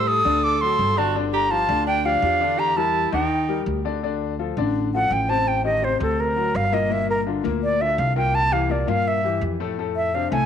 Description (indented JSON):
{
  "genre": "jazz",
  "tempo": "167 BPM",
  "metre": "4/4",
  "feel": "straight",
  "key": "D minor",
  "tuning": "A4 = 440 Hz",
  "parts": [
    { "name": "breathy silver concert flute", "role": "melody", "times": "0.0-10.5 s", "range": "A4 to Eb6", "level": "-21 LUFS", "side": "equal", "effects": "slapback echo" },
    { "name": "clear tenor saxophone", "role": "second line", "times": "0.0-3.6 s", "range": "D4 to A4", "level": "-27 LUFS", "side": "right 12 dB", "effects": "none" },
    { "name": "clear grand piano", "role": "accompaniment", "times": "0.0-10.5 s", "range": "A2 to Eb5", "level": "-26 LUFS", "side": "left 10 dB", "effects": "none" },
    { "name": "upright bass", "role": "bass", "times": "0.0-10.5 s", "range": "G1 to A2", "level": "-26 LUFS", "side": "right 2 dB", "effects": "none" }
  ],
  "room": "light reverb, small room ambience",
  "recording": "1960s-style stereo with parts hard left and right",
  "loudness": "-19 LUFS",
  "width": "side -8 dB against mid",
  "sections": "0.0-4.0 A section; 4.0-10.5 B section",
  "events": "flute solo 4.0-10.5",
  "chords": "0.4 D7; 1.1 Gsus2; 2.6 Em7b5; 3.3 Eb; 4.0 Dm7; 5.5 Am7b5; 6.2 Daug7; 6.9 Gm7; 8.3 C6; 9.8 F6"
}